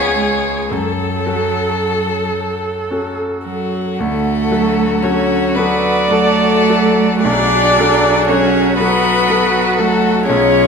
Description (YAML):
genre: classical, slow romantic movement for piano quintet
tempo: 34-41 BPM (dotted quarters)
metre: 6/8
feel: rubato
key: unclear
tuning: A4 = 440 Hz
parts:
  - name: rich violin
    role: melody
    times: 0.0-10.7 s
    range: F#4 to D5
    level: -18 LUFS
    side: left 8 dB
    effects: none
  - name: rich cello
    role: second line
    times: 0.0-10.7 s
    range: F#3 to D4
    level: -18 LUFS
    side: right 6 dB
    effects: none
  - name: bright concert grand piano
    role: accompaniment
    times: 0.0-10.7 s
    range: B1 to A4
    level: -18 LUFS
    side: left 1 dB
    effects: none
  - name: rich viola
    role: accompaniment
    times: 0.0-10.7 s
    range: F#4 to D5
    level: -20 LUFS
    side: right 4 dB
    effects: none
  - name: rich violin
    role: second line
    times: 4.0-10.7 s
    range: E#4 to G#4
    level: -22 LUFS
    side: left 3 dB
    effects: none
room: wet recital hall reverb, RT60 1.5 s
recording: minimal, uncompressed stereo recording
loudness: -12 LUFS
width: side -5 dB against mid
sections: 0.0-4.0 A section; 4.0-10.7 B section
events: none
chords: 0.0 C#7; 0.7 F#m; 4.0 D; 7.2 Bm7